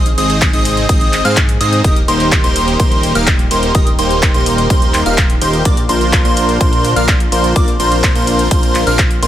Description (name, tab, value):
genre	EDM, festival progressive house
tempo	126 BPM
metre	4/4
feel	straight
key	Eb major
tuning	A4 = 441 Hz
part	lush unison pad	sustained chords	0.0-9.3 s	Bb2 to Ab4	-23 LUFS	equal	chorus, sidechain pumping
part	plucky unison lead	arpeggios	0.0-9.3 s	C6 to F6	-19 LUFS	equal	sidechain pumping, digital delay
part	supersaw chords	riff	0.0-9.3 s	Bb3 to F5	-17 LUFS	equal	sidechain pumping, digital delay
part	fat analog bass	bass	0.0-9.3 s	Eb1 to Ab2	-19 LUFS	equal	tube saturation, sidechain pumping
part	big-room dance drum kit	drums	0.1-9.3 s	handclaps, hi-hat	-19 LUFS	left 1 dB	none
part	electronic kick drum	drums	0.4-9.1 s	none	-13 LUFS	equal	none
room	light reverb, digital ambience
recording	none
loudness	-10 LUFS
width	side -12 dB against mid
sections	0.0-9.3 A section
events	none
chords	0.0 Ab; 1.8 Eb; 5.7 Bb